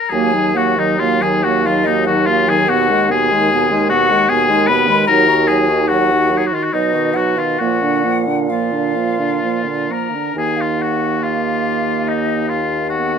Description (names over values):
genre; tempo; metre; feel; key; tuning
classical, slow romantic movement for wind quintet; 63-77 BPM; 3/4; rubato; Eb minor; A4 = 439 Hz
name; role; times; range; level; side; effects
hollow concert flute; melody; 0.0-13.2 s; D#5 to Cb6; -21 LUFS; left 4 dB; none
clear oboe; second line; 0.0-13.2 s; Eb4 to Cb5; -18 LUFS; left 4 dB; none
clear clarinet; accompaniment; 0.1-13.2 s; Gb3 to Gb4; -22 LUFS; right 8 dB; none
mellow French horn; accompaniment; 0.1-13.2 s; Cb3 to Gb3; -22 LUFS; right 2 dB; none
warm bassoon; bass; 0.1-13.2 s; Eb2 to B2; -20 LUFS; right 1 dB; none
room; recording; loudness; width
moderate stone room reverb, RT60 0.9 s; none; -13 LUFS; side -7 dB against mid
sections
0.1-13.2 A section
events
none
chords
0.1 Ebm; 2.7 Abm/Eb; 5.1 Ebm; 6.7 B; 7.6 Bb; 10.4 Eb5